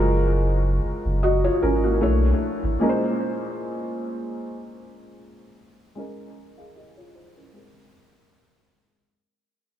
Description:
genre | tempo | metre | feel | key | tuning
contemporary R&B | 76 BPM | 4/4 | swing 54% on 16ths | Ab major | A4 = 440 Hz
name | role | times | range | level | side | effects
felt-muted upright piano | accompaniment | 0.0-9.1 s | Bb2 to F5 | -24 LUFS | equal | low-pass filter, dub echo
sub bass with octave | bass | 0.0-2.8 s | Gb1 to B1 | -22 LUFS | equal | none
room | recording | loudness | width
light reverb | echo-heavy mix, small room ambience | -20 LUFS | side -11 dB against mid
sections
0.0-9.1 A section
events
fade-out 0.0-9.1; filter sweep on felt piano 0.0-9.1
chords
0.0 Gbmaj9; 2.0 Bm11; 2.8 Bbm11; 6.0 Eb7sus4; 7.5 Abmaj9

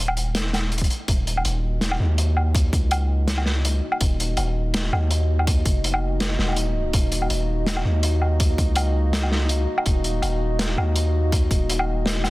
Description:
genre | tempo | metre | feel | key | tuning
half-time drum and bass | 164 BPM | 4/4 | swing 54% on 16ths, half-time | Eb minor | A4 = 441 Hz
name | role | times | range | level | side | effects
long sustained 808-style bass | bass | 0.0-12.3 s | Eb1 to Eb2 | -22 LUFS | equal | tube saturation
crunchy breakbeat drum kit | drums | 0.1-12.3 s | hi-hat, snare drum, woodblock | -25 LUFS | equal | none
electronic kick drum | drums | 0.8-11.6 s | none | -21 LUFS | equal | none
dark analog pad | sustained chords | 1.1-12.3 s | Bb3 to Eb5 | -29 LUFS | left 1 dB | chorus, vintage 12-bit sampler grit, sidechain pumping
room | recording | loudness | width
little or no reverb | dense, heavily limited modern master | -19 LUFS | side -19 dB against mid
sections
0.0-12.3 A section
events
none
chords
0.0 Ebm

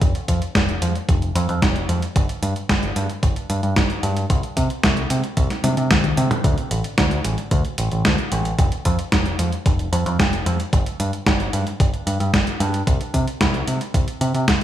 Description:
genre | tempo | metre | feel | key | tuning
italo disco | 112 BPM | 4/4 | straight | D minor | A4 = 438 Hz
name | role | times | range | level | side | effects
deep dub picked electric bass | bass | 0.0-14.6 s | F1 to C3 | -22 LUFS | equal | digital delay
clean 12-bit digital drum machine | drums | 0.0-14.6 s | hi-hat, snare drum, toms | -22 LUFS | equal | gated reverb
electronic kick drum | drums | 0.0-14.6 s | none | -20 LUFS | equal | none
room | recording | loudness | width
little or no reverb | studio ambience | -18 LUFS | side -11 dB against mid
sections
0.0-14.6 A section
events
drum fill 5.6-6.4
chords
none

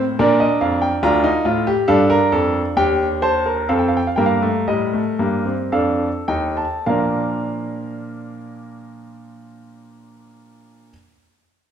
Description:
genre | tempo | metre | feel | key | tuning
classical, baroque-style 4-part fugue for grand piano | 51-73 BPM | 3/4 | straight | Bb major | A4 = 440 Hz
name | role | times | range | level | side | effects
warm grand piano | solo | 0.0-10.9 s | D2 to Bb5 | -17 LUFS | equal | none
room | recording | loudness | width
wet recital hall reverb, RT60 1.4 s | minimal, uncompressed stereo recording | -16 LUFS | side -8 dB against mid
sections
0.0-6.9 A section; 6.9-10.4 B section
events
slowing down 0.0-6.9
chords
0.2 Bb; 1.0 Bb/D; 2.8 Cm/Eb; 3.7 F7sus4; 5.7 F7; 6.9 Bb

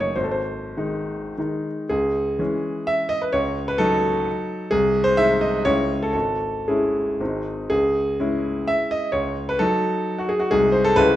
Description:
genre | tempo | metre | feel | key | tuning
classical, romantic triple-time dance for piano with dotted rhythms | 92-139 BPM | 3/4 | rubato | C# minor | A4 = 440 Hz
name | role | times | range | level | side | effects
warm grand piano | solo | 0.0-11.2 s | F#1 to E5 | -19 LUFS | equal | none
room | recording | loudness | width
wet recital hall reverb, RT60 1.3 s | none | -20 LUFS | side -13 dB against mid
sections
0.0-1.9 A section; 1.9-11.2 B section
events
none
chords
0.1 G#; 1.9 C#m; 3.3 D#m7b5/C#; 4.7 G#/B#; 5.7 C#m; 6.1 C#m/G#; 7.2 G#; 7.7 C#m; 9.1 D#m7b5/C#; 10.5 G#/B#

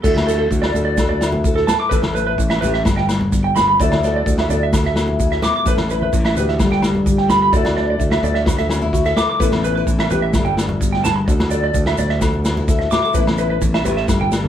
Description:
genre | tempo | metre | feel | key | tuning
highlife guitar band | 128 BPM | 4/4 | straight | unclear | A4 = 441 Hz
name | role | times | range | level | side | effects
nylon-string guitar | accompaniment | 0.0-14.5 s | G2 to A4 | -22 LUFS | left 3 dB | none
electric guitar through a small old amp | arpeggios | 0.0-14.3 s | A4 to D6 | -20 LUFS | right 2 dB | none
modern bright fingered electric bass | bass | 0.0-14.5 s | G1 to D2 | -21 LUFS | equal | none
vintage drum kit | drums | 0.0-14.4 s | crash cymbal, kick drum, snare drum | -20 LUFS | equal | none
shekere | percussion | 0.0-14.4 s | none | -30 LUFS | right 4 dB | none
agogo bells | percussion | 0.2-14.4 s | none | -29 LUFS | left 4 dB | none
congas | percussion | 0.2-14.5 s | none | -28 LUFS | right 1 dB | none
room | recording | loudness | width
moderate studio reverb, RT60 0.6 s | band playing live in one room | -15 LUFS | side -10 dB against mid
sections
0.0-14.5 A section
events
none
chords
0.0 Dsus2; 1.9 Asus2; 2.9 Gadd9; 3.8 Dsus2; 5.7 Asus2; 6.6 Gadd9; 7.5 Dsus2; 9.4 Asus2; 10.3 Gadd9; 11.3 Dsus2; 13.1 Asus2

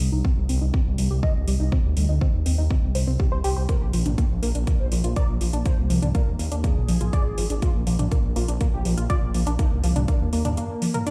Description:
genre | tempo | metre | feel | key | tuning
melodic techno | 122 BPM | 4/4 | straight | unclear | A4 = 440 Hz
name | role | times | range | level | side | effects
tight sequenced synth | arpeggios | 0.0-11.1 s | F3 to Eb5 | -31 LUFS | equal | chorus, cassette tape, sidechain pumping, dub echo
dark detuned saw bass | bass | 0.0-10.6 s | Ab1 to Eb2 | -26 LUFS | equal | sidechain pumping
house drum kit | drums | 0.0-11.1 s | hi-hat, toms | -35 LUFS | equal | none
electronic kick drum | drums | 0.2-10.2 s | none | -25 LUFS | equal | none
mellow synth brass | melody | 3.7-11.1 s | Bb3 to C5 | -36 LUFS | equal | chorus, tape echo
room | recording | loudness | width
digital ambience | played on a big sound system in a bare room, stone room reverb | -23 LUFS | mono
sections
0.0-11.1 A section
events
filter sweep on synth arpeggio sound 0.0-11.1; break 10.6-11.1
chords
0.0 Cm; 3.7 Bb5

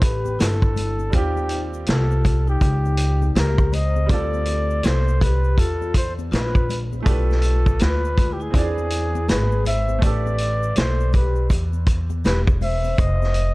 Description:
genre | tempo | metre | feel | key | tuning
hip hop, jazz-hop | 81 BPM | 4/4 | swing 62% on 16ths | unclear | A4 = 440 Hz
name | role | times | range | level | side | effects
breathy flugelhorn | melody | 0.0-13.5 s | G4 to E5 | -26 LUFS | equal | plate reverb, tape echo
vibraphone with medium mallets | second line | 0.0-13.5 s | Eb4 to C5 | -31 LUFS | left 5 dB | none
clear upright piano | accompaniment | 0.0-13.0 s | G3 to D5 | -33 LUFS | right 6 dB | plate reverb
upright bass | bass | 0.0-13.5 s | E1 to E2 | -21 LUFS | equal | none
vintage drum kit | drums | 0.0-13.5 s | hi-hat, kick drum, snare drum | -20 LUFS | equal | none
egg shaker and congas | percussion | 0.0-13.5 s | none | -37 LUFS | left 8 dB | none
room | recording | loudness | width
little or no reverb | dark, warm production | -18 LUFS | side -21 dB against mid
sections
0.0-13.5 A section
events
none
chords
0.0 Cmaj7 (rootless); 1.1 Eb9; 4.1 Dm9; 7.1 Bm7b5; 8.5 E7b13; 10.0 Asus2; 13.0 F7(no3)

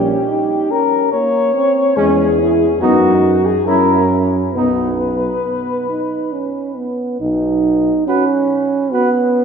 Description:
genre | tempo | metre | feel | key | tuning
classical, brass quintet | 67-71 BPM | 3/4 | straight | B major | A4 = 440 Hz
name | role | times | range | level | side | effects
dark cornet | melody | 0.0-9.1 s | F#4 to F#5 | -17 LUFS | left 4 dB | none
dark trombone | accompaniment | 0.0-9.4 s | Bb3 to E4 | -17 LUFS | right 3 dB | none
clear tuba | bass | 0.0-7.9 s | Bb1 to F#2 | -21 LUFS | right 2 dB | none
mellow trumpet | second line | 2.0-9.1 s | C#4 to B4 | -23 LUFS | right 4 dB | none
dark French horn | accompaniment | 2.0-9.1 s | G#3 to F#4 | -22 LUFS | left 3 dB | none
room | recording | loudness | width
wet church reverb, RT60 3.6 s | recorded in a church or concert hall | -13 LUFS | side -6 dB against mid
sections
0.0-7.2 A section; 7.2-9.4 B section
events
none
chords
0.0 Gdim/Bb; 2.0 C#m/E; 2.8 B/F#; 3.7 F#7; 4.5 B

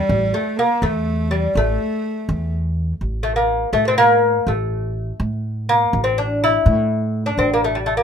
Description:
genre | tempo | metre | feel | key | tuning
persian | 82 BPM (dotted quarters) | 6/8 | straight | A dastgah shur | A4 = 436 Hz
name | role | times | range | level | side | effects
lute | melody | 0.0-8.0 s | G3 to E4 | -18 LUFS | left 1 dB | none
warm cello | second line | 0.0-2.5 s | G3 to B3-49c | -26 LUFS | right 3 dB | none
upright bass | bass | 0.1-8.0 s | A1 to A2 | -21 LUFS | right 1 dB | none
room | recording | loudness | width
little or no reverb | minimal, uncompressed stereo recording | -17 LUFS | side -7 dB against mid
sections
0.0-3.0 A section; 3.0-8.0 B section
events
none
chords
none

